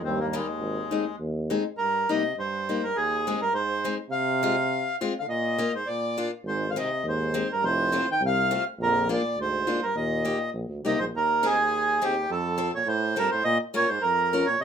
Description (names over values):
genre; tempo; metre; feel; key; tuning
alpine folk, alpine dance band; 103 BPM; 2/4; straight; Eb major, Ab major from 11.1 s; A4 = 440 Hz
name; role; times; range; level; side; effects
accordion; melody; 0.0-14.6 s; Ab3 to G5; -25 LUFS; right 1 dB; none
warm euphonium; second line; 0.0-14.6 s; Eb2 to Eb3; -32 LUFS; right 4 dB; none
warm tuba; bass; 0.0-1.6, 6.4-11.1 s; F1 to Eb2; -30 LUFS; equal; none
picked steel-string acoustic guitar; accompaniment; 0.3-14.5 s; G3 to Bb4; -29 LUFS; left 4 dB; none
room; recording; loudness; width
moderate small room reverb, RT60 0.5 s; minimal, uncompressed stereo recording; -24 LUFS; side -8 dB against mid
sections
0.0-1.8 A section; 1.8-11.1 B section; 11.1-14.6 A section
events
none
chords
0.0 Eb; 0.6 Ab; 1.8 Eb; 3.0 Ab; 4.1 Fm; 5.3 Bbsus4; 5.9 Bb; 6.4 Ab; 7.6 F; 8.8 Bb; 9.9 Eb; 11.1 Ab; 12.3 F; 13.4 Bbm